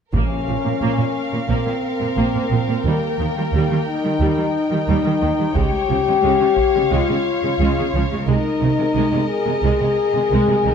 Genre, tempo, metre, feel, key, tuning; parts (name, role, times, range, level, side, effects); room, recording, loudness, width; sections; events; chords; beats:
cinematic, epic orchestral film score; 89 BPM; 4/4; straight; Bb dorian; A4 = 436 Hz
warm symphonic violin section; second line; 0.1-10.7 s; Bb4 to Db5; -29 LUFS; left 2 dB
warm symphonic viola section; accompaniment; 0.1-10.7 s; Eb3 to Bb3; -25 LUFS; right 2 dB
rich symphonic cello section; bass; 0.1-10.7 s; Bb2 to Eb3; -24 LUFS; right 4 dB
rich symphonic double bass section; bass; 0.1-10.7 s; Bb1 to Eb2; -23 LUFS; right 4 dB
taiko ensemble; drums; 0.1-1.5, 5.6-6.9 s; -23 LUFS; right 1 dB
timpani; percussion; 0.1-1.1 s; Bb2; -31 LUFS; right 1 dB
warm studio violin section; melody; 0.2-10.7 s; Eb5 to G5; -31 LUFS; left 3 dB
mellow French horn section; sustained chords; 0.2-10.7 s; Bb3 to Ab4; -20 LUFS; left 5 dB
moderate scoring stage reverb, RT60 2.0 s; dark, warm production; -16 LUFS; side -7 dB against mid
0.1-10.7 A section
0.1 Bbm; 2.9 Eb; 5.6 Db; 8.3 Abadd9/C
| 0.14 0.82 1.50 2.17 | 2.85 3.53 4.21 4.88 | 5.56 6.24 6.92 7.59 | 8.27 8.95 9.63 10.30